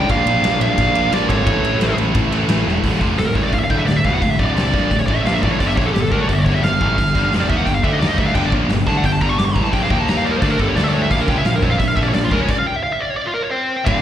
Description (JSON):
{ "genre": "heavy metal", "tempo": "174 BPM", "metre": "4/4", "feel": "straight", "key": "D harmonic minor", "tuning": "A4 = 439 Hz", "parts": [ { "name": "high-gain lead guitar", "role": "melody", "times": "0.0-14.0 s", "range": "F4 to D6", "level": "-20 LUFS", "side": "right 1 dB", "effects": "distortion, slapback echo, digital delay" }, { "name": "bluesy overdriven lead guitar", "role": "second line", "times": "0.0-1.9, 13.5-14.0 s", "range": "A4 to D5", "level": "-29 LUFS", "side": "right 2 dB", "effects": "distortion, slapback echo" }, { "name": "distorted electric guitar", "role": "riff", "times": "0.0-14.0 s", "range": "D2 to F4", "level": "-26 LUFS", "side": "right 1 dB", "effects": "overdrive, slapback echo" }, { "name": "heavy high-gain guitar", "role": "riff", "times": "0.0-14.0 s", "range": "D2 to F4", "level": "-25 LUFS", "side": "left 9 dB", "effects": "distortion, slapback echo" }, { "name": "scooped high-gain guitar", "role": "riff", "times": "0.0-14.0 s", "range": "D2 to F4", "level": "-24 LUFS", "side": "right 7 dB", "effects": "distortion, slapback echo" }, { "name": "fuzz picked electric bass", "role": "bass", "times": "0.0-14.0 s", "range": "D1 to F2", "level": "-20 LUFS", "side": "equal", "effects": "overdrive" }, { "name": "big rock drum kit", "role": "drums", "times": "0.1-13.9 s", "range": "crash cymbal, hi-hat, kick drum, ride cymbal, snare drum", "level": "-21 LUFS", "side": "equal", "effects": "none" } ], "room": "studio ambience", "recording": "live gig heard through the venue's PA, recital hall reverb", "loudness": "-15 LUFS", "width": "side -10 dB against mid", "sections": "0.0-2.8 A section; 2.8-13.9 B section", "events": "drum fill 2.7; lead electric guitar solo 2.8-13.9; stop 12.5-13.9", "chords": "0.1 Bb; 1.5 A; 2.8 Dm; 5.6 G5; 9.9 Eb5; 10.4 G5; 10.8 D5; 11.1 Bb5; 12.7 N.C." }